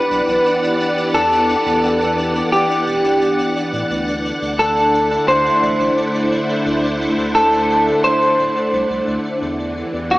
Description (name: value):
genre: IDM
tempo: 87 BPM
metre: 4/4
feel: straight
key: unclear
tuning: A4 = 440 Hz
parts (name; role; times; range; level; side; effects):
- electric guitar at the edge of break-up; melody; 0.0-10.2 s; G4 to C5; -16 LUFS; equal; analog chorus, digital delay
- soft string machine; sustained chords; 0.0-10.2 s; D3 to F#5; -20 LUFS; equal; ensemble chorus
- pulsing gated texture; texture; 0.0-10.2 s; D4 to D5; -25 LUFS; equal; chorus, built-in reverb
- warm sub bass; bass; 0.1-10.2 s; D1 to A2; -29 LUFS; equal; none
room: moderate lush hall reverb, RT60 2.5 s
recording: small speaker sound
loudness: -14 LUFS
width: side -18 dB against mid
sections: 0.0-10.2 A section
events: none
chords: 0.0 Em7; 3.9 D7; 9.4 Em7